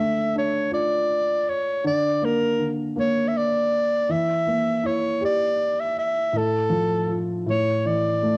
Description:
children's music, lullaby; 54 BPM (dotted quarters); 6/8; straight; D harmonic minor; A4 = 442 Hz
breathy soprano saxophone; melody; 0.0-8.4 s; A4 to E5; -22 LUFS; equal; cassette tape
felt-muted upright piano; accompaniment; 0.0-8.4 s; A2 to G4; -25 LUFS; equal
moderate spring reverb, RT60 1.1 s, studio reverb; home recording on cassette; -20 LUFS; side -27 dB against mid
0.0-8.4 A section
0.0 Dm; 1.9 Bb/D; 4.1 Edim; 6.3 F/A; 7.5 A

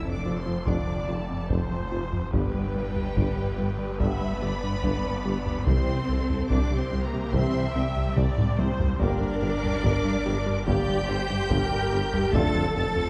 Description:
cinematic, hybrid orchestral and electronic film score; 72 BPM; 4/4; straight; A4 = 440 Hz
rich symphonic violin section; melody; 0.0-13.1 s; G5 to A6; -41 LUFS; equal
rich symphonic violin section; second line; 0.0-13.1 s; G4 to A5; -40 LUFS; equal
clear symphonic viola section; accompaniment; 0.0-13.1 s; G4 to E5; -37 LUFS; equal
fat analog bass; riff; 0.0-13.1 s; C2 to G3; -34 LUFS; equal
rich symphonic cello section; bass; 0.0-13.1 s; G3 to A4; -35 LUFS; equal
rich symphonic double bass section; bass; 0.0-13.1 s; C2 to G2; -35 LUFS; equal
snarling distorted saw bass; bass; 0.0-13.1 s; F1 to C2; -36 LUFS; equal
mellow tuba; bass; 0.2-12.8 s; F1 to C2; -35 LUFS; equal
warm French horn section; sustained chords; 0.7-12.6 s; Bb3 to G4; -37 LUFS; equal
warm trombone section; sustained chords; 0.7-12.6 s; D3 to A3; -39 LUFS; equal
solo taiko drums; drums; 0.7-13.1 s; -32 LUFS; equal
wet scoring stage reverb, RT60 1.6 s; dark, warm production; -26 LUFS; mono
0.0-13.1 A section
drum fill 8.2-9.0
0.0 Dm/F; 2.3 G; 5.7 C; 9.0 Gm; 12.3 Dm/F

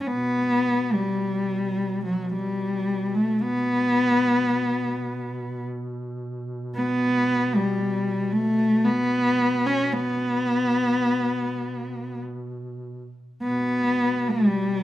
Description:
caucasian folk, Caucasian lament; 50-58 BPM; 3/4; rubato; A4 = 440 Hz
dark cello; melody; 0.0-14.8 s; F#3 to C#4; -22 LUFS; left 1 dB
mellow duduk; drone; 0.1-14.8 s; B2; -34 LUFS; right 1 dB
moderate recital hall reverb, RT60 1.7 s; minimal, uncompressed stereo recording; -21 LUFS; side -14 dB against mid
0.1-13.4 A section; 13.4-14.8 A section

